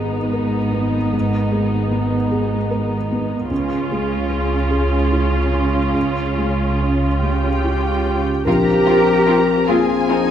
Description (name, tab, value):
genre	cinematic, emotional film score for orchestra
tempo	49 BPM (dotted quarters)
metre	6/8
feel	rubato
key	unclear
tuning	A4 = 439 Hz
part	muted studio violin section	melody	0.0-10.3 s	G#4 to Bb5	-29 LUFS	left 1 dB	none
part	muted studio violin section	second line	0.0-10.2 s	D#4 to Bb4	-26 LUFS	left 2 dB	none
part	felt-muted upright piano	accompaniment	0.0-10.3 s	Bb1 to A#4	-22 LUFS	equal	none
part	muted studio viola section	accompaniment	0.0-10.2 s	B3 to F4	-26 LUFS	equal	none
part	muted studio cello section	bass	0.0-10.3 s	G#2 to G4	-24 LUFS	right 3 dB	none
part	muted studio double bass section	bass	0.0-8.2 s	G#1 to C#2	-22 LUFS	right 2 dB	none
part	mellow clarinet	second line	7.2-10.3 s	G4 to Bb4	-20 LUFS	left 2 dB	none
part	mellow French horn section	sustained chords	8.4-10.3 s	F3 to C4	-21 LUFS	left 8 dB	none
room	moderate scoring stage reverb, RT60 1.4 s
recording	none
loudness	-16 LUFS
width	side -9 dB against mid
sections	0.0-8.5 A section; 8.5-10.3 B section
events	none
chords	0.0 G#madd9; 3.5 C#; 8.5 Bbsus2